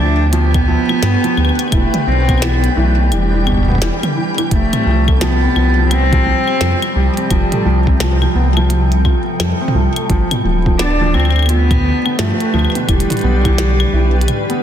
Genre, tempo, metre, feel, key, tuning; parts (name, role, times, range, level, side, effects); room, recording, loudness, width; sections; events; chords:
IDM; 86 BPM; 4/4; swing 62% on 16ths; F lydian; A4 = 443 Hz
warm cello; melody; 0.0-14.6 s; G3 to D4; -19 LUFS; equal; digital delay
granular cloud pad; sustained chords; 0.0-14.6 s; C3 to B4; -24 LUFS; equal; built-in reverb, vintage 12-bit sampler grit, sidechain pumping
felt-muted upright piano; arpeggios; 0.0-14.6 s; B2 to F4; -21 LUFS; right 1 dB; tape echo
dark detuned saw bass; bass; 0.0-14.3 s; D1 to G2; -15 LUFS; equal
flickering grainy texture; texture; 0.0-14.6 s; G5; -27 LUFS; left 1 dB; built-in reverb
glitchy drum kit; drums; 0.3-14.6 s; claves, hi-hat, snare drum, toms; -22 LUFS; left 1 dB
electronic kick drum; drums; 0.5-13.6 s; -16 LUFS; equal
light reverb, digital ambience; dense, heavily limited modern master; -12 LUFS; side -10 dB against mid
0.0-14.6 A section
break 14.3-14.6
0.0 Gadd9; 1.7 Em; 4.5 Fsus2; 10.1 Gadd9; 12.9 Em